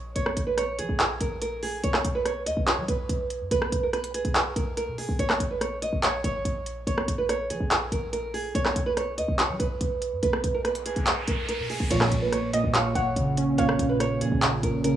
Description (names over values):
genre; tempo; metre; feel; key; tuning
hip hop, trap; 143 BPM; 4/4; half-time; Bb phrygian; A4 = 440 Hz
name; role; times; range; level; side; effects
nylon-string guitar; melody; 0.0-15.0 s; Ab4 to D#5; -29 LUFS; right 2 dB; low-pass filter, cassette tape, analog delay
short 808-style bass; bass; 0.0-15.0 s; Ab1 to F#3; -30 LUFS; equal; none
trap drum kit; drums; 0.2-14.9 s; crash cymbal, handclaps, hi-hat, rim click; -27 LUFS; equal; cassette tape
riser; sound effects; 10.5-11.9 s; none; -36 LUFS; right 1 dB; none
warbly lo-fi synth keys; accompaniment; 11.9-15.0 s; Bb2 to Db4; -25 LUFS; right 2 dB; chorus, low-pass filter, cassette tape
funky polysynth comp; stabs; 11.9-12.3 s; Db2 to F3; -30 LUFS; equal; chorus, cassette tape
warbly dusty pluck; second line; 12.5-15.0 s; Eb5 to Gb5; -31 LUFS; right 1 dB; chorus, cassette tape, analog delay
room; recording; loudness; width
light reverb; home recording on cassette, small room ambience; -24 LUFS; side -11 dB against mid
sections
0.0-11.9 A section; 11.9-15.0 B section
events
riser 10.5-11.9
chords
0.0 Bbm; 1.8 N.C.; 5.2 Bbm; 8.5 N.C.; 11.9 Bbm